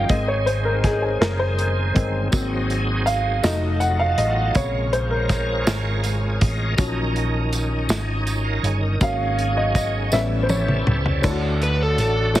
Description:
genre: slow gospel.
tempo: 54 BPM (dotted quarters).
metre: 6/8.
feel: straight.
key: unclear.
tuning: A4 = 440 Hz.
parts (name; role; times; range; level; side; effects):
warm upright piano; accompaniment; 0.0-12.4 s; C3 to G5; -24 LUFS; left 1 dB; none.
bright tonewheel organ; sustained chords; 0.0-12.4 s; Eb3 to Ab5; -27 LUFS; right 2 dB; slow rotary speaker, chorus vibrato.
hollow-body short-scale fingered electric bass; bass; 0.0-12.4 s; F1 to D2; -23 LUFS; equal; none.
warm soul drum kit; drums; 0.1-12.4 s; crash cymbal, hi-hat, kick drum, snare drum, toms; -23 LUFS; equal; none.
tambourine; percussion; 2.3-12.4 s; none; -36 LUFS; right 5 dB; none.
overdriven slide guitar; melody; 11.6-12.4 s; A4 to B4; -22 LUFS; equal; none.
room: light reverb, small room ambience.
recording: heavily compressed radio sound, multiband compression.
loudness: -19 LUFS.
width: side -14 dB against mid.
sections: 0.0-11.2 A section; 11.2-12.4 B section.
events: upright piano solo 0.0-11.2; tonewheel organ fill 5.7-6.8; drum fill 10.1-11.2.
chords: 0.1 Ab; 2.3 Ab7; 3.4 F7b9; 4.6 Bbm7; 6.8 Ebm7/Bb; 9.0 Ab7sus4; 10.1 A7; 11.2 Dmaj7.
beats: | 0.09 1.21 | 2.33 3.44 | 4.56 5.67 | 6.79 7.90 | 9.02 10.13 | 11.24 12.36.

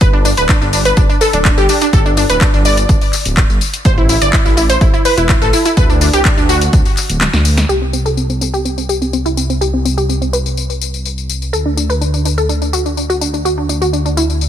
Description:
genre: progressive house.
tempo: 125 BPM.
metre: 4/4.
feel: straight.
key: unclear.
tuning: A4 = 442 Hz.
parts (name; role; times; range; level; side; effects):
wide unison pluck; arpeggios; 0.0-14.5 s; C4 to D5; -15 LUFS; equal; cassette tape, sidechain pumping, ping-pong delay.
dark detuned saw bass; bass; 0.0-14.5 s; D1 to D2; -17 LUFS; equal; sidechain pumping.
electronic kick drum; drums; 0.0-6.8 s; none; -13 LUFS; equal; none.
house drum kit; drums; 0.0-14.5 s; handclaps, hi-hat, snare drum, tambourine; -19 LUFS; left 3 dB; none.
room: little or no reverb.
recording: none.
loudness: -11 LUFS.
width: side -10 dB against mid.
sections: 0.0-7.7 A section; 7.7-14.5 B section.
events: drop 0.0-7.7; kick drops out 7.2-7.7; drum fill 7.2-7.7; filter sweep on synth pluck 7.7-14.5.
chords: 0.0 G5; 3.9 A5; 5.8 D; 7.7 Cmaj7(no3); 11.5 N.C..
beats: | 0.01 0.49 0.97 1.45 | 1.93 2.41 2.89 3.37 | 3.85 4.33 4.81 5.29 | 5.77 6.25 6.73 7.21 | 7.69 8.17 8.65 9.13 | 9.61 10.09 10.57 11.05 | 11.53 12.01 12.49 12.97 | 13.45 13.93 14.41.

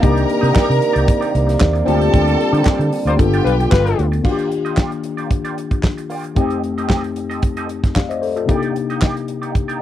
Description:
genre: disco.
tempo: 113 BPM.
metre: 4/4.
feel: straight.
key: C dorian.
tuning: A4 = 444 Hz.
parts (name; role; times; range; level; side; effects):
clear symphonic string section; second line; 0.0-4.0 s; G4 to Bb5; -22 LUFS; right 2 dB; none.
tine electric piano; accompaniment; 0.0-9.8 s; F2 to F5; -21 LUFS; left 6 dB; lush chorus.
twangy electric guitar; accompaniment; 0.0-9.8 s; Bb3 to Eb5; -27 LUFS; right 5 dB; wah, spring reverb.
warm French horn section; sustained chords; 0.0-4.2 s; C3 to D5; -21 LUFS; right 4 dB; none.
fingered electric bass; bass; 0.0-4.2 s; G1 to D3; -17 LUFS; right 1 dB; none.
modern studio drum kit; drums; 0.0-9.8 s; crash cymbal, handclaps, hi-hat, kick drum, snare drum; -16 LUFS; equal; none.
mellow horn section; stabs; 3.1-4.1 s; G3 to C5; -19 LUFS; left 7 dB; none.
room: little or no reverb.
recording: dry, close 1970s-style studio recording.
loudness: -15 LUFS.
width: side -12 dB against mid.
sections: 0.0-4.2 A section; 4.2-9.8 B section.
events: band accent 2.1-4.2.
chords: 0.0 Cm9; 1.9 Bb69/D; 3.2 G7; 4.2 Ebmaj9; 6.4 F9; 8.5 Cm9.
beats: | 0.03 0.55 1.08 1.61 | 2.13 2.66 3.19 3.72 | 4.25 4.78 5.31 5.84 | 6.37 6.90 7.43 7.96 | 8.49 9.03 9.56.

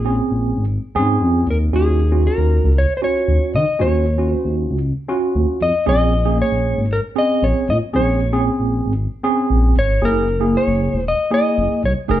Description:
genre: straight-eighth soul blues.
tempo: 116 BPM.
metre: 4/4.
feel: straight.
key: Bb minor.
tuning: A4 = 436 Hz.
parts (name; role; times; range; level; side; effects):
clean lap steel guitar; melody; 0.0-12.2 s; Ab4 to Eb5; -20 LUFS; left 1 dB; none.
tine electric piano; accompaniment; 0.0-12.2 s; A3 to Ab4; -20 LUFS; right 2 dB; medium stereo tremolo.
smooth gliding synth bass; bass; 0.0-12.2 s; Fb1 to Eb3; -18 LUFS; equal; none.
room: moderate large studio reverb, RT60 0.9 s.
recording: band playing live in one room.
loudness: -15 LUFS.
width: side -12 dB against mid.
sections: 0.0-12.2 A section.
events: none.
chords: 0.0 Bbm7; 1.7 Ebm7; 5.9 Bbm7; 10.0 Gb7.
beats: 0.18 0.69 1.21 | 1.73 2.25 2.76 3.28 | 3.80 4.32 4.83 5.35 | 5.87 6.39 6.91 7.42 | 7.94 8.46 8.98 9.50 | 10.02 10.54 11.05 11.57 | 12.09.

